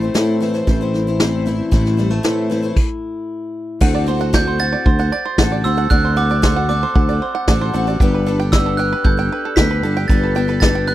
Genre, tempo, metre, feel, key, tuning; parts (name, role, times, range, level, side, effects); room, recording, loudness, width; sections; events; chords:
indie folk with a building arrangement; 115 BPM; 4/4; straight; D mixolydian; A4 = 440 Hz
fingerpicked steel-string acoustic guitar; accompaniment; 0.0-4.9 s; E2 to E4; -24 LUFS; left 2 dB
picked twelve-string acoustic guitar; accompaniment; 0.0-10.9 s; A2 to C5; -24 LUFS; left 5 dB; lush chorus
sustaining fretless electric bass; bass; 0.0-10.9 s; G1 to A2; -18 LUFS; equal; wide subtle chorus
vintage brush drum kit; drums; 0.1-10.7 s; crash cymbal, kick drum, snare drum; -16 LUFS; equal
bluegrass banjo; arpeggios; 3.8-10.9 s; A4 to G5; -25 LUFS; right 8 dB
glockenspiel with hard plastic mallets; melody; 4.3-10.9 s; D6 to B6; -22 LUFS; right 3 dB
little or no reverb; dry, close 1970s-style studio recording; -14 LUFS; side -14 dB against mid
0.0-3.8 A section; 3.8-10.9 B section
stop 2.8-3.8
0.0 Am; 3.8 D7; 8.0 Gadd9